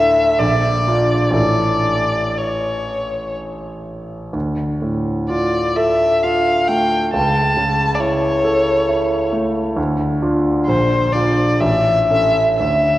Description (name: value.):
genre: classical, romantic duo for violin and grand piano.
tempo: 58-69 BPM.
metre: 3/4.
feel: rubato.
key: unclear.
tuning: A4 = 443 Hz.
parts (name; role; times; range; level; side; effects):
clear violin; melody; 0.0-13.0 s; C5 to A5; -17 LUFS; left 1 dB; none.
clear concert grand piano; accompaniment; 0.0-13.0 s; A1 to A4; -18 LUFS; right 1 dB; none.
room: wet concert hall reverb, RT60 2.5 s.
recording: worn, warbling old tape, cassette tape, warbly pitch drift.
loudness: -15 LUFS.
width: side -15 dB against mid.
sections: 0.0-13.0 A section.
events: none.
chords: 0.4 Bb; 1.4 A; 4.3 Dm; 7.1 A/C#; 9.8 Dm; 10.7 Bb; 11.6 A.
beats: 0.40 | 1.36 2.38 3.37 | 4.35 5.30 6.23 | 7.14 8.01 8.88 | 9.77 10.67 11.61 | 12.61.